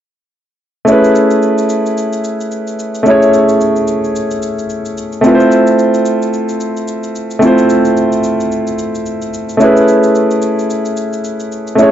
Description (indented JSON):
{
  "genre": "amapiano",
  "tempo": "110 BPM",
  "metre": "4/4",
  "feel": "swing 58% on 16ths",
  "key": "A major",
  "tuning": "A4 = 439 Hz",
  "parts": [
    { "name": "warm concert grand piano", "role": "accompaniment", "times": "0.8-11.9 s", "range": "A3 to C#5", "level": "-10 LUFS", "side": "equal", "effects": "none" },
    { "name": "shaker", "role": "drums", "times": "0.9-11.9 s", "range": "none", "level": "-32 LUFS", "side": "left 2 dB", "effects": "none" }
  ],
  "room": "moderate lush hall reverb, RT60 1.9 s, studio reverb",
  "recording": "dark, warm production, nothing above 7.6 kHz",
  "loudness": "-10 LUFS",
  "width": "side -10 dB against mid",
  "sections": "0.9-11.9 A section",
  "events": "none",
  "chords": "0.9 Amaj9; 5.2 Fmaj7; 9.6 Amaj9",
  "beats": "| 0.88 1.43 1.97 2.52 | 3.06 3.61 4.15 4.70 | 5.24 5.79 6.33 6.88 | 7.42 7.97 8.52 9.06 | 9.61 10.15 10.70 11.24 | 11.79"
}